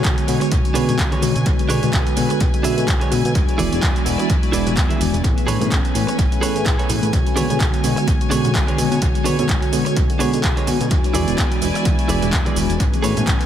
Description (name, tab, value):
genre	filtered disco house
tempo	127 BPM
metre	4/4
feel	swing 56% on 16ths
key	B dorian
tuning	A4 = 438 Hz
part	mellow tine electric piano	accompaniment	0.0-13.5 s	D3 to G#5	-21 LUFS	equal	medium stereo tremolo, phaser, vintage 12-bit sampler grit, sidechain pumping, tape echo
part	warm studio violin section	sustained chords	0.0-13.5 s	C#4 to G#5	-28 LUFS	equal	vintage 12-bit sampler grit, sidechain pumping
part	direct-recorded clean electric guitar	riff	0.0-13.3 s	D4 to E5	-28 LUFS	right 4 dB	sidechain pumping, tape echo
part	fat analog bass	bass	0.0-13.4 s	E1 to B2	-23 LUFS	equal	tube saturation, sidechain pumping
part	electronic kick drum	drums	0.0-13.4 s	none	-20 LUFS	equal	none
part	punchy analog drum machine	drums	0.0-13.5 s	handclaps, hi-hat, shaker	-26 LUFS	right 1 dB	tape echo
part	tube shaker and congas	percussion	0.0-13.5 s	none	-32 LUFS	left 1 dB	none
room	digital ambience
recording	echo-heavy mix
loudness	-16 LUFS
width	side -10 dB against mid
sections	0.0-13.5 A section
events	none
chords	0.0 Bm69; 3.4 E7; 5.2 Amaj9; 7.1 Bm69; 10.9 E7; 12.8 Amaj9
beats	0.04 0.52 0.99 | 1.46 1.93 2.41 2.88 | 3.35 3.82 4.30 4.77 | 5.24 5.71 6.19 6.66 | 7.13 7.60 8.08 8.55 | 9.02 9.49 9.97 10.44 | 10.91 11.38 11.86 12.33 | 12.80 13.27